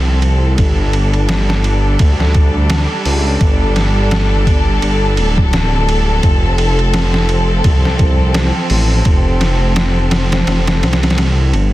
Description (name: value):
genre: trip hop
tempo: 85 BPM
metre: 4/4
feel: swing 57% on 16ths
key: unclear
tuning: A4 = 440 Hz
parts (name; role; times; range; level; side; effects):
- muted studio string section; sustained chords; 0.0-11.7 s; F3 to A4; -18 LUFS; left 1 dB; none
- dark detuned saw bass; bass; 0.0-11.7 s; D1 to D2; -14 LUFS; equal; none
- trip hop sampler-style drum kit; drums; 0.2-11.7 s; hi-hat, kick drum, ride cymbal, snare drum; -16 LUFS; equal; none
room: little or no reverb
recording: dense, heavily limited modern master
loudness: -11 LUFS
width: side -16 dB against mid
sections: 0.0-11.7 A section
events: kick drops out 10.5-11.7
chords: 0.0 F; 0.6 Gsus2; 6.2 F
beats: | 0.59 1.30 2.00 2.71 | 3.42 4.12 4.83 5.53 | 6.24 6.95 7.65 8.36 | 9.06 9.77 10.47 11.18